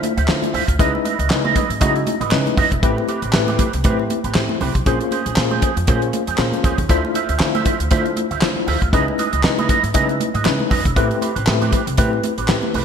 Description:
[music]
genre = early-eighties boogie funk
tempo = 118 BPM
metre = 4/4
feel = swing 56% on 16ths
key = unclear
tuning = A4 = 440 Hz
[part]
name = tine electric piano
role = accompaniment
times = 0.0-12.8 s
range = G#3 to C5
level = -21 LUFS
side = left 5 dB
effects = overdrive, fast stereo tremolo
[part]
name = electric guitar with an envelope filter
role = riff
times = 0.0-12.8 s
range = C4 to E5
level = -23 LUFS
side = right 7 dB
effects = ensemble chorus
[part]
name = damped 70s drum kit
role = drums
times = 0.0-12.8 s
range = handclaps, hi-hat, kick drum, snare drum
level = -20 LUFS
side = equal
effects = gated reverb
[part]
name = congas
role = percussion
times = 0.0-12.8 s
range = none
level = -28 LUFS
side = right 7 dB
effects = none
[part]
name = upright bass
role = bass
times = 0.2-12.8 s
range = E1 to D3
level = -23 LUFS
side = equal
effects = none
[sound]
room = light reverb, studio ambience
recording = bright 1980s-style digital production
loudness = -16 LUFS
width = side -7 dB against mid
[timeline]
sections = 0.0-12.8 A section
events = none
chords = 0.0 Dm9; 0.8 C#m9; 2.8 Am9; 4.9 Bbm9; 6.9 Dm9; 8.9 C#m9; 11.0 Am9

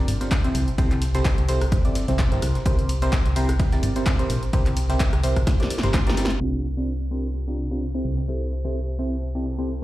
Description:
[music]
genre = piano house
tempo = 128 BPM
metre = 4/4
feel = swing 55% on 16ths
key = C mixolydian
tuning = A4 = 440 Hz
[part]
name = barking FM electric piano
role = riff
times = 0.0-9.8 s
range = C3 to D5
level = -27 LUFS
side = equal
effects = phaser, cassette tape, sidechain pumping, low-pass filter, tape echo
[part]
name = solid FM bass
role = bass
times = 0.0-9.8 s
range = G1 to C2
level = -24 LUFS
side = equal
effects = tube saturation, sidechain pumping
[part]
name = breakbeat sampler-style drum kit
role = drums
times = 0.1-9.8 s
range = hi-hat, ride cymbal, snare drum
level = -40 LUFS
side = right 1 dB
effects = high-pass filter on snare, low-pass filter on snare, high-pass filter on cymbals, low-pass filter on cymbals, high-pass filter on hats, low-pass filter on hats
[part]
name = punchy analog drum machine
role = drums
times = 0.1-9.6 s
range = handclaps, hi-hat, rim click, snare drum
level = -30 LUFS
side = equal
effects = overdrive
[part]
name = electronic kick drum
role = drums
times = 0.3-6.0 s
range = none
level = -22 LUFS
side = equal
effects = overdrive
[sound]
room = little or no reverb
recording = played on a big sound system in a bare room, large studio reverb, low-pass filter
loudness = -20 LUFS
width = side -16 dB against mid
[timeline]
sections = 0.0-6.4 A section; 6.4-9.8 B section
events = drum fill 5.5-6.4; filter sweep on FM electric piano 6.4-9.8; filter sweep 6.4-9.8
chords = 0.0 Bb69; 0.5 Am7/C; 2.4 C7; 6.4 Bb69/C; 8.0 Am7/C

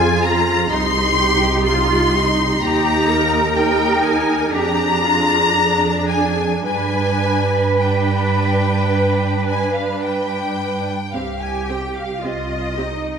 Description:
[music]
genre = classical, slow romantic movement for string orchestra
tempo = 51-64 BPM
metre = 4/4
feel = rubato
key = C minor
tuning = A4 = 440 Hz
[part]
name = rich symphonic violin section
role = melody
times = 0.0-13.2 s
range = Eb5 to C6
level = -22 LUFS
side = left 4 dB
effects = none
[part]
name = rich studio violin section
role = second line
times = 0.0-13.2 s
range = Eb5 to C6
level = -25 LUFS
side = left 3 dB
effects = none
[part]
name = rich symphonic viola section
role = accompaniment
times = 0.0-12.9 s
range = C4 to B4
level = -21 LUFS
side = right 1 dB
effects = none
[part]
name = rich symphonic cello section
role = bass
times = 0.0-13.2 s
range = D4 to B4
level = -23 LUFS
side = right 3 dB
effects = none
[part]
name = rich symphonic double bass section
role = bass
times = 0.0-13.2 s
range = C2 to G2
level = -22 LUFS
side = right 4 dB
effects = none
[sound]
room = wet concert hall reverb, RT60 1.7 s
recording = minimal, uncompressed stereo recording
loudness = -15 LUFS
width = side -6 dB against mid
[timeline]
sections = 0.0-11.1 A section; 11.1-13.2 B section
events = none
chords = 0.0 Fm; 0.7 Cm; 2.6 Eb; 4.5 Ddim/F; 6.7 G; 11.1 Cm

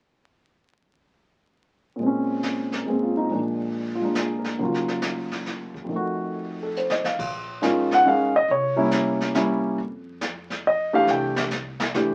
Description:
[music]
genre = jazz piano trio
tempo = 139 BPM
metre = 3/4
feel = swing 66% on 8ths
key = Bb minor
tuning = A4 = 440 Hz
[part]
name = dark grand piano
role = melody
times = 2.0-12.1 s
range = Eb2 to G5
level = -24 LUFS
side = equal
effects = none
[part]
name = jazz brush drum kit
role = drums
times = 2.0-12.1 s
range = brushed snare drum, crash cymbal, hi-hat, kick drum, snare drum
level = -33 LUFS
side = equal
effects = none
[part]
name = upright bass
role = bass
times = 7.2-12.1 s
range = Bb1 to F2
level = -40 LUFS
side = equal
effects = none
[sound]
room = light reverb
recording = very old 78 rpm record, vinyl crackle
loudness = -24 LUFS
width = mono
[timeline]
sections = 2.0-7.2 A section; 7.2-12.1 B section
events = drum fill 6.8-7.2, 11.1-11.9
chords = 2.0 Bbm9; 3.3 Bb7; 4.6 Ebm9; 5.9 F7b9; 7.2 Bbm7; 8.5 C7b9; 9.8 N.C.; 11.1 C

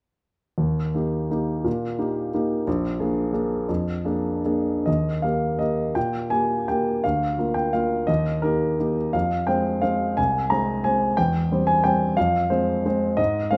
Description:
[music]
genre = classical, piano waltz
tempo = 135-192 BPM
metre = 3/4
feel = rubato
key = Eb major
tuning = A4 = 441 Hz
[part]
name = warm grand piano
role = solo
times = 0.6-13.6 s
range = Bb1 to Bb5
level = -23 LUFS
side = equal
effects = none
[sound]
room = moderate stone room reverb, RT60 1.1 s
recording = none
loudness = -23 LUFS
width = mono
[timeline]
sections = 0.6-4.9 A section; 4.9-13.6 B section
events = none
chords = 0.6 Eb; 2.7 Bb7; 4.9 Eb; 7.0 Bb/D; 8.1 Eb; 9.1 Fm; 11.2 C/E; 12.2 Fm

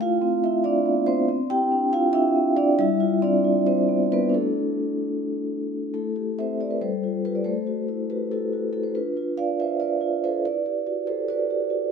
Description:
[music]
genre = classical, contemporary piece for solo vibraphone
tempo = 280 BPM (eighths)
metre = 7/8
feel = rubato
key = A minor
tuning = A4 = 438 Hz
[part]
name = vibraphone with soft mallets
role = solo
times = 0.0-11.9 s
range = G3 to G5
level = -21 LUFS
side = equal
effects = none
[sound]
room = light reverb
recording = close, detailed microphones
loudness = -21 LUFS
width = side -6 dB against mid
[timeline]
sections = 0.0-5.9 A section; 5.9-11.9 B section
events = none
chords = 0.0 Amadd9; 1.3 Cadd9; 2.8 G7sus4; 4.3 Dadd9; 5.9 Am7; 6.8 G9sus4; 7.5 Am6; 9.0 Dm6; 10.4 Em9

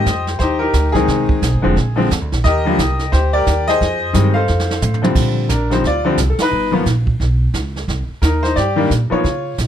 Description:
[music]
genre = jazz piano trio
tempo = 176 BPM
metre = 4/4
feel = swing 62% on 8ths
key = Bb major from 5.2 s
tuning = A4 = 440 Hz
[part]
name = bright upright piano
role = melody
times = 0.0-9.6 s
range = D3 to F5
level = -16 LUFS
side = left 2 dB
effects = none
[part]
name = upright bass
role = bass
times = 0.0-9.7 s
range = F1 to Db3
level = -18 LUFS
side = right 1 dB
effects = none
[part]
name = jazz brush drum kit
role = drums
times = 0.1-9.7 s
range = brushed snare drum, crash cymbal, hi-hat, kick drum, ride cymbal, snare drum, toms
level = -22 LUFS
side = right 3 dB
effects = none
[sound]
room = little or no reverb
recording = close, detailed microphones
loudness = -14 LUFS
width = side -10 dB against mid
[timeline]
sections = 0.0-5.2 A section; 5.2-9.7 B section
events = drum fill 4.5-5.2; band accent 6.4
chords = 0.0 Abmaj7; 1.1 Fm7; 1.8 Bb7; 2.4 Ebmaj7; 3.8 Fm7; 4.5 F; 5.2 Bb69; 6.5 Gaug; 7.9 Cm7

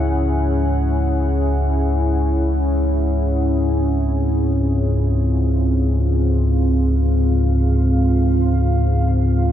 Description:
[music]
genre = dark ambient drone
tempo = free time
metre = none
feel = none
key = unclear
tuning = A4 = 441 Hz
[part]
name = deep dark ambient pad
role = sustained chords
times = 0.0-9.5 s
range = C4 to F#5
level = -20 LUFS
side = equal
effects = chorus, built-in reverb
[part]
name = deep rumbling drone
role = drone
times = 0.0-9.5 s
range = C#2 to G#2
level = -17 LUFS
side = equal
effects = built-in reverb
[sound]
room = moderate huge ambient reverb, RT60 7.1 s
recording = dark, warm production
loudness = -16 LUFS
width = side -10 dB against mid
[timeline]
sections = 0.0-9.5 A section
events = none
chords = 0.0 C#m; 3.6 Fm

